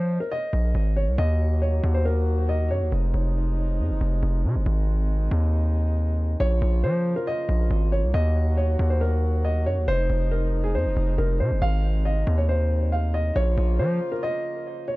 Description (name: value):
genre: hip hop, drill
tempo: 138 BPM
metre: 4/4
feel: half-time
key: Bb minor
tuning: A4 = 440 Hz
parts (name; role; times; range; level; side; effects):
- dark baby grand piano; melody; 0.0-2.9, 6.4-15.0 s; Ab4 to F5; -28 LUFS; equal; low-pass filter, tape echo
- distorted 808-style bass; bass; 0.0-14.0 s; F1 to F3; -22 LUFS; equal; distortion
- warm brass ensemble; sustained chords; 1.2-15.0 s; C3 to Gb4; -33 LUFS; right 1 dB; none
room: small room ambience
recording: echo-heavy mix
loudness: -21 LUFS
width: side -20 dB against mid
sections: 0.0-15.0 A section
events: break 14.2-15.0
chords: 0.0 Bb5; 1.2 Ebm; 2.9 Fm7; 4.7 Ab; 6.4 Bbm; 8.1 Ebm; 9.9 Fm7; 11.6 Ab; 13.4 Bbm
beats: 0.31 0.75 | 1.18 1.62 2.05 2.49 | 2.92 3.36 3.79 4.23 | 4.66 5.10 5.53 5.97 | 6.40 6.83 7.27 7.71 | 8.14 8.57 9.01 9.44 | 9.88 10.31 10.75 11.18 | 11.62 12.05 12.49 12.92 | 13.36 13.79 14.23 14.66